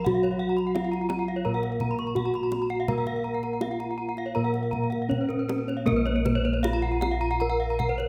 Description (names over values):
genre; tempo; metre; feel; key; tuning
Balinese gamelan; 78-87 BPM; 4/4; straight; Bb pelog; A4 = 442 Hz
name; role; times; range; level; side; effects
gamelan-type bronze metallophone; melody; 0.0-8.1 s; Bb3 to Bb4; -31 LUFS; equal; slapback echo
gamelan-type bronze metallophone; accompaniment; 0.0-5.9 s; Gb3-20c to Bb3; -36 LUFS; equal; none
gamelan-type bronze metallophone; arpeggios; 0.0-8.1 s; Bb4 to Db6-30c; -35 LUFS; equal; none
gamelan-type bossed gongs; bass; 0.0-8.1 s; Bb1 to Bb4; -33 LUFS; equal; none
kendang; percussion; 0.1-8.1 s; none; -37 LUFS; equal; none
gamelan-type bronze metallophone; arpeggios; 0.2-7.9 s; Cb5+20c to Cb6+20c; -39 LUFS; equal; none
room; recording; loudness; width
wet recital hall reverb, RT60 1.4 s; none; -27 LUFS; mono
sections
0.0-5.9 A section; 5.9-8.1 B section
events
none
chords
none